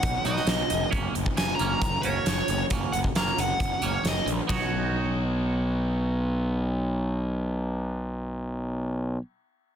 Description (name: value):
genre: quiet-loud alternative rock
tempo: 134 BPM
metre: 4/4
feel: straight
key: B major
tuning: A4 = 440 Hz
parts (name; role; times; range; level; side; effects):
- dark smooth lead guitar; melody; 0.0-4.3 s; C#5 to A#5; -30 LUFS; equal; overdrive, tape echo
- twangy electric guitar; arpeggios; 0.0-9.2 s; F#3 to C#5; -33 LUFS; right 6 dB; phaser, tape echo
- fuzz picked electric bass; bass; 0.0-9.2 s; E#1 to B1; -28 LUFS; equal; overdrive
- huge arena drum kit; drums; 0.0-4.6 s; hi-hat, kick drum, ride cymbal, snare drum; -28 LUFS; equal; none
room: studio ambience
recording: dense, heavily limited modern master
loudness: -24 LUFS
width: side -9 dB against mid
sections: 0.0-4.5 A section; 4.5-8.1 B section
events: lead electric guitar solo 0.0-4.5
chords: 0.0 B; 0.9 F#; 4.5 Badd9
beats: 0.03 0.48 | 0.92 1.37 1.81 2.26 | 2.71 3.15 3.60 4.04 | 4.49 4.94 5.38 5.83 | 6.28 6.72 7.17 7.62